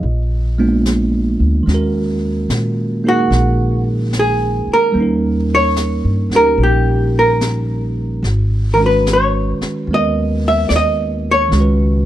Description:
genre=jazz ballad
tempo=73 BPM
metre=4/4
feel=swing 66% on 8ths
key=unclear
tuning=A4 = 439 Hz
part: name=archtop guitar, miked and amplified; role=melody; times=0.0-12.1 s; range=F#4 to E5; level=-15 LUFS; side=equal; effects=slapback echo
part: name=bell-like tine electric piano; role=accompaniment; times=0.0-12.1 s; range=D#3 to Eb5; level=-18 LUFS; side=right 2 dB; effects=none
part: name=upright bass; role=bass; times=0.0-12.1 s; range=G#1 to A#2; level=-17 LUFS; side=equal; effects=none
part: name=jazz brush drum kit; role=drums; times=0.0-12.1 s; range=brushed snare drum, hi-hat, snare drum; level=-26 LUFS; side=left 1 dB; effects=none
room=little or no reverb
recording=dry, close 1970s-style studio recording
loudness=-13 LUFS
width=side -12 dB against mid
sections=0.0-12.1 A section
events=none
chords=0.0 A#7b9; 1.7 D#m7; 4.9 D#7; 8.2 G#m11; 11.5 C#5

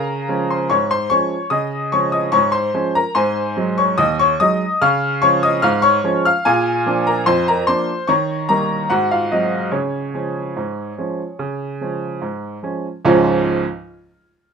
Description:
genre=ragtime piano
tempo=73 BPM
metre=2/4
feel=straight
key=Db major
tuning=A4 = 440 Hz
part: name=clear upright piano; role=solo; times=0.0-13.6 s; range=Db2 to F6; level=-16 LUFS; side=equal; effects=none
room=light reverb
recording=minimal, uncompressed stereo recording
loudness=-16 LUFS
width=side -6 dB against mid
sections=0.0-13.0 A section; 13.0-14.5 B section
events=none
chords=0.0 Db; 3.2 Ab7; 4.8 Db; 6.4 Bb7; 8.1 Eb7; 8.9 Ab7; 9.7 Db

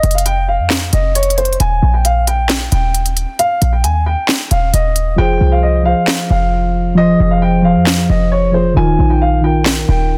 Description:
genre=hip hop, trap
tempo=134 BPM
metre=4/4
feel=half-time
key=F minor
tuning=A4 = 440 Hz
part: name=dark concert grand piano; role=melody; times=0.0-10.2 s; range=C5 to Ab5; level=-20 LUFS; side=equal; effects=low-pass filter
part: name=short 808-style bass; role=bass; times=0.0-10.2 s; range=Eb1 to F2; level=-17 LUFS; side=equal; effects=none
part: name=trap drum kit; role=drums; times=0.0-9.8 s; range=handclaps, hi-hat, snare drum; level=-20 LUFS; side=equal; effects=none
part: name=muted felt-like synth keys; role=accompaniment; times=5.2-10.2 s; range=Eb3 to C5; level=-17 LUFS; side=equal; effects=chorus, low-pass filter
room=digital ambience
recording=dense, heavily limited modern master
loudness=-14 LUFS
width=mono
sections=0.0-10.2 A section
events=hi-hats muted 5.2-10.2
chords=0.0 F5; 1.6 Eb5; 5.2 Fm; 8.8 Ebsus2

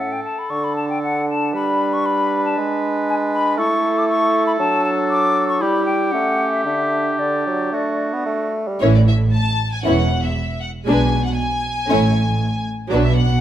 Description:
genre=quick classical-period movement for symphony orchestra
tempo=117 BPM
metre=4/4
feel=rubato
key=D major, A major from 8.8 s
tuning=A4 = 439 Hz
part: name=clear oboe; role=second line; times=0.0-8.5 s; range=F#4 to B4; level=-25 LUFS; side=right 1 dB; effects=none
part: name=hollow concert flute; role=second line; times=0.0-8.5 s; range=D5 to D6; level=-21 LUFS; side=left 2 dB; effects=none
part: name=warm clarinet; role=second line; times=0.0-8.5 s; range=C#4 to E4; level=-24 LUFS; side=right 3 dB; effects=none
part: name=clear bassoon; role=accompaniment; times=0.0-8.8 s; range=A2 to B3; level=-22 LUFS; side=equal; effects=none
part: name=rich studio violin section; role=melody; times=8.8-13.4 s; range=C#5 to A5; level=-24 LUFS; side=left 2 dB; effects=none
part: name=dark chamber violin section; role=second line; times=8.8-13.2 s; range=D4 to C#5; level=-23 LUFS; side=left 1 dB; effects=none
part: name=warm studio viola section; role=accompaniment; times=8.8-13.2 s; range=E3 to D4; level=-23 LUFS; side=equal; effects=none
part: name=dark studio double bass section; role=bass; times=8.8-13.3 s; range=E1 to B1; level=-21 LUFS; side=right 2 dB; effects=none
part: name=dark symphonic cello section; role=bass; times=8.8-13.3 s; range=E2 to B2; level=-20 LUFS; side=right 2 dB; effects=none
room=moderate scoring stage reverb, RT60 1.8 s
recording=close, detailed microphones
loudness=-16 LUFS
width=side -11 dB against mid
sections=0.0-8.8 A section; 8.8-13.4 B section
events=none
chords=0.0 A; 0.5 D5; 1.5 G; 2.6 G#dim; 3.6 A5; 4.6 D/F#; 5.6 Em/G; 6.1 A7; 6.7 D; 8.8 A; 10.9 G#dim/B; 11.9 A

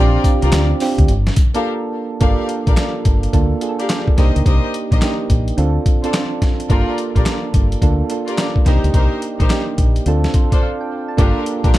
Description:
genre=R&B, new jack swing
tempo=107 BPM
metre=4/4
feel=swing 64% on 16ths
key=G minor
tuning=A4 = 440 Hz
part: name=soft electric-piano-like synth keys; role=accompaniment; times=0.0-11.8 s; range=Bb3 to A5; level=-21 LUFS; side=right 3 dB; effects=chorus
part: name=warm studio string section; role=stabs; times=0.0-11.8 s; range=D4 to F5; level=-25 LUFS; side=left 4 dB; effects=ping-pong delay
part: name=deep dub fingered electric bass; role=bass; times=0.0-11.7 s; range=G1 to D2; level=-17 LUFS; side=equal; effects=none
part: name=boom bap sampler-style drum kit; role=drums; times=0.2-11.8 s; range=handclaps, hi-hat, kick drum, snare drum, tambourine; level=-16 LUFS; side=equal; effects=none
room=little or no reverb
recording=dark, warm production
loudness=-14 LUFS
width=side -16 dB against mid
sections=0.0-2.2 A section; 2.2-11.8 B section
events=break 1.6-2.2, 10.6-11.2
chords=0.0 Bb6; 1.1 Gm9; 2.2 Gm7; 4.2 Cm7; 5.6 Dm7; 6.7 Gm7; 8.7 Cm7; 10.1 Dm7; 11.2 Gm7

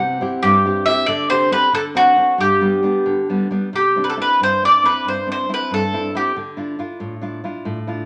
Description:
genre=italian folk, Italian serenade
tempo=92 BPM (dotted quarters)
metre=6/8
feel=straight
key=G major, C major from 3.7 s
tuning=A4 = 440 Hz
part: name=mandolin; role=melody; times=0.0-6.3 s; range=F#4 to F#5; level=-18 LUFS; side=equal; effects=none
part: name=nylon-string guitar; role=accompaniment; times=0.0-8.1 s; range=G2 to G4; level=-25 LUFS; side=equal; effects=none
room=moderate large studio reverb, RT60 1.2 s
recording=none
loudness=-17 LUFS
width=mono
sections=0.0-3.7 A section; 3.7-8.1 B section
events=none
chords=0.0 C; 1.1 D7sus4; 1.7 D7; 2.4 G; 3.7 Cadd9; 6.3 Dmadd9

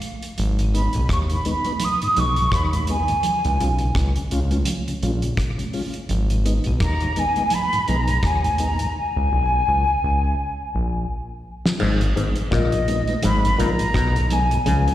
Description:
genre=roots reggae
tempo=84 BPM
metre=4/4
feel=swing 57% on 16ths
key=G# minor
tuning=A4 = 440 Hz
part: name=cloth-damped thuddy drum kit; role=drums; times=0.0-14.9 s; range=crash cymbal, hi-hat, kick drum, rim click, snare drum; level=-27 LUFS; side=equal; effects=slapback echo
part: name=round analog bass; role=bass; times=0.4-14.9 s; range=G#1 to D#2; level=-21 LUFS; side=equal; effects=none
part: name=congas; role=percussion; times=0.4-14.8 s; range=none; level=-29 LUFS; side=right 4 dB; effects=slapback echo
part: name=mellow tonewheel organ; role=accompaniment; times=0.6-14.9 s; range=G#2 to E#4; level=-29 LUFS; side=left 1 dB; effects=slow rotary speaker, slapback echo
part: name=mellow concert flute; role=melody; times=0.8-14.9 s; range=D#5 to D#6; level=-22 LUFS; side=equal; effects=tape echo, slapback echo
part: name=auto-wah clav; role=riff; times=11.8-14.9 s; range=G#2 to C#3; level=-24 LUFS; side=left 4 dB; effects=slapback echo
room=light reverb, small room ambience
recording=live gig heard through the venue's PA, recital hall reverb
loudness=-18 LUFS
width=side -13 dB against mid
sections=0.0-11.8 A section; 11.8-14.9 B section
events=drums muted 8.9-11.8; drum fill 11.1-11.8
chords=0.4 G#m; 3.2 C#; 6.1 G#m; 8.9 C#5; 11.8 G#m

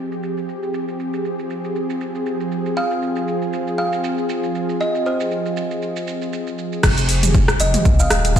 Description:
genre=afro house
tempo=118 BPM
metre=4/4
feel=swing 56% on 16ths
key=F minor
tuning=A4 = 441 Hz
part: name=warm analog pad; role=sustained chords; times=0.0-8.4 s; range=F3 to Ab4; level=-23 LUFS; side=equal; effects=chorus, sidechain pumping
part: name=deep house drum kit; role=drums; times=0.1-8.4 s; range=crash cymbal, hi-hat, rim click, shaker, toms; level=-22 LUFS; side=right 1 dB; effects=overdrive, low-pass filter on snare, small room ambience, low-pass filter on perc, low-pass filter on toms, low-pass filter on cymbals, low-pass filter on hats
part: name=kalimba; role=melody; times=2.8-8.4 s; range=C5 to F5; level=-24 LUFS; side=right 1 dB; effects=vintage 12-bit sampler grit, ping-pong delay
part: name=round analog bass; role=bass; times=6.8-8.4 s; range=Eb1 to C2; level=-19 LUFS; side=equal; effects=sidechain pumping
part: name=electronic kick drum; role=drums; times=6.8-8.4 s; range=none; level=-18 LUFS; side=equal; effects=overdrive, small room ambience
room=moderate recital hall reverb, RT60 1.7 s, digital ambience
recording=played on a big sound system in a bare room, large studio reverb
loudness=-18 LUFS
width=side -9 dB against mid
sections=0.0-6.8 A section; 6.8-8.4 B section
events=drop 6.8-8.4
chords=0.0 Fmadd9; 6.8 Fm9

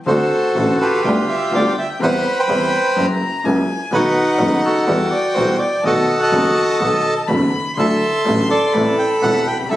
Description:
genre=tango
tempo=125 BPM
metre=4/4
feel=rubato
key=unclear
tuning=A4 = 440 Hz
part: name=bandoneon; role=melody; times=0.1-9.8 s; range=D#4 to G5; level=-16 LUFS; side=right 1 dB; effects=none
part: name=warm violin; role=second line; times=0.1-9.8 s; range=F#5 to C6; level=-26 LUFS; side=left 2 dB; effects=none
part: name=warm concert grand piano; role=accompaniment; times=0.1-9.8 s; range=E1 to F#4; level=-22 LUFS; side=left 2 dB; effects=none
part: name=clear double bass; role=bass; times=0.1-9.8 s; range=E1 to E2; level=-22 LUFS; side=equal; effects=none
room=moderate large studio reverb, RT60 0.8 s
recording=recorded on a phone in the room, studio reverb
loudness=-14 LUFS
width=side -14 dB against mid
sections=0.1-9.8 A section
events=none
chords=0.1 D7; 1.0 G7/D; 2.0 Cmaj7/E; 3.0 F#7; 3.9 B7; 4.9 Emadd9; 5.8 B7; 7.8 Dadd9; 8.8 Am

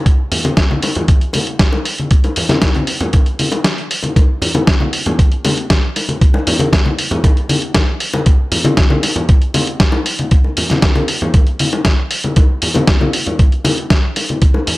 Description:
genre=nu-disco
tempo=117 BPM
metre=4/4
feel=straight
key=none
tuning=none
part: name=dusty soul sampler-style drum kit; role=drums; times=0.1-14.8 s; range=hi-hat, snare drum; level=-17 LUFS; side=equal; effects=small room ambience
part: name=electronic kick drum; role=drums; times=0.1-14.5 s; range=none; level=-11 LUFS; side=equal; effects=small room ambience
part: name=congas and bongos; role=percussion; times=0.3-14.8 s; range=none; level=-18 LUFS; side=left 1 dB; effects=none
room=digital ambience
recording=dry, gritty hardware recording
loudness=-12 LUFS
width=side -19 dB against mid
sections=0.0-14.8 A section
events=break 3.6-4.2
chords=none

